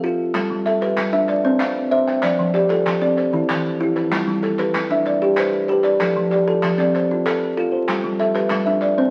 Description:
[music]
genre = southern african traditional, mbira-style interlocking cycle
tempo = 127 BPM (dotted quarters)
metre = 12/8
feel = straight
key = G mixolydian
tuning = A4 = 440 Hz
[part]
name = kalimba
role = arpeggios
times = 0.0-9.1 s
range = E3 to C5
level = -22 LUFS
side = equal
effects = none
[part]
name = kalimba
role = arpeggios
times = 0.0-9.1 s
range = E3 to G5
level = -23 LUFS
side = equal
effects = none
[part]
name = group handclap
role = percussion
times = 0.3-8.9 s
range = none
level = -30 LUFS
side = equal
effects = none
[sound]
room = moderate large studio reverb, RT60 1.1 s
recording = very old 78 rpm record, vinyl crackle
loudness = -19 LUFS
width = mono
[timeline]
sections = 0.3-9.1 A section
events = none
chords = 0.3 G; 1.3 C; 2.2 F; 3.2 Em; 4.1 G; 6.0 F; 7.9 G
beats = | 0.35 0.82 1.29 1.76 | 2.23 2.70 3.17 3.65 | 4.12 4.59 5.06 5.53 | 6.00 6.47 6.94 7.41 | 7.88 8.36 8.82

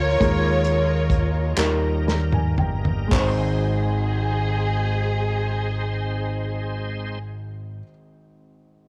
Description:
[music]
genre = slow gospel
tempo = 36-47 BPM (dotted quarters)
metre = 6/8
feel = straight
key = Ab major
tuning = A4 = 440 Hz
[part]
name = warm studio string section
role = melody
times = 0.0-7.2 s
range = F4 to Db5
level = -29 LUFS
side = equal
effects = none
[part]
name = dark upright piano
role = accompaniment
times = 0.0-8.9 s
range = Ab1 to Bb5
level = -30 LUFS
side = equal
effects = cassette tape
[part]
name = bright tonewheel organ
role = sustained chords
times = 0.0-7.2 s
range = F3 to C5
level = -35 LUFS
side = equal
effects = slow rotary speaker, overdrive, chorus vibrato, cassette tape
[part]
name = fingered electric bass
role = bass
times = 0.0-7.8 s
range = G1 to Eb2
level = -26 LUFS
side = equal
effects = none
[part]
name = warm soul drum kit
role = drums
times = 0.2-3.4 s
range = hi-hat, kick drum, snare drum, toms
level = -27 LUFS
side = equal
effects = cassette tape
[part]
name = group handclap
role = percussion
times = 1.6-3.6 s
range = none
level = -30 LUFS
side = equal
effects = none
[sound]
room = small room ambience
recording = home recording on cassette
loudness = -22 LUFS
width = mono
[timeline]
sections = 0.0-3.1 A section; 3.1-6.4 B section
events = slowing down 0.0-3.1; drum fill 1.6-3.1; upright piano fill 1.6-3.1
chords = 0.2 Ebsus4; 1.6 Eb; 3.1 Ab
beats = | 0.21 1.58 | 3.12 4.78

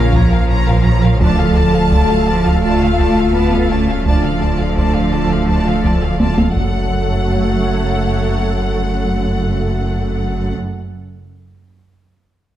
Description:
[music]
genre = cinematic, hybrid orchestral and electronic film score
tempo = 84 BPM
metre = 4/4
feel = straight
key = F# harmonic minor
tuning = A4 = 440 Hz
[part]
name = clear symphonic violin section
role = melody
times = 0.0-10.5 s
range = E#5 to A#5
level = -24 LUFS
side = left 2 dB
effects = none
[part]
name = rich symphonic violin section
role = second line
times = 0.0-10.5 s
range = C#5 to A5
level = -28 LUFS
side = left 2 dB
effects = none
[part]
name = rich symphonic viola section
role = accompaniment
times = 0.0-10.5 s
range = A3 to F5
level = -26 LUFS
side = right 1 dB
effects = none
[part]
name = clear trombone section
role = sustained chords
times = 0.0-10.5 s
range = F3 to D4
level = -29 LUFS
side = right 4 dB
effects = none
[part]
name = mellow French horn section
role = sustained chords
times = 0.0-10.5 s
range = C#4 to A4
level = -24 LUFS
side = left 4 dB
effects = none
[part]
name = sweeping resonant pad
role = sustained chords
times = 0.0-10.5 s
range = E#3 to F5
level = -24 LUFS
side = equal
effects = chorus
[part]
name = rubbery square bass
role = riff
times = 0.0-6.5 s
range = D2 to D3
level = -22 LUFS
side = left 2 dB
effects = none
[part]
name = punchy sub bass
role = bass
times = 0.0-10.5 s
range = D1 to A#1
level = -21 LUFS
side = equal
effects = none
[part]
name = rich symphonic cello section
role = bass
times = 0.0-10.5 s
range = F#2 to B3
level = -20 LUFS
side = right 2 dB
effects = none
[part]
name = rich symphonic double bass section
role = bass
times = 0.0-10.5 s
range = F#1 to D2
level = -20 LUFS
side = right 3 dB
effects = none
[part]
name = taiko ensemble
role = drums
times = 0.1-7.9 s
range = none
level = -19 LUFS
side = equal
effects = none
[sound]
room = moderate scoring stage reverb, RT60 1.4 s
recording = dark, warm production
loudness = -13 LUFS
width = side -12 dB against mid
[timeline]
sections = 0.0-6.9 A section; 6.9-9.8 B section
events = drum fill 6.2-6.9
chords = 0.0 A#m; 1.2 Dm; 6.6 F#m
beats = 0.49 | 1.20 1.92 2.63 3.35 | 4.06 4.78 5.49 6.20 | 6.92 7.63 8.35 9.06

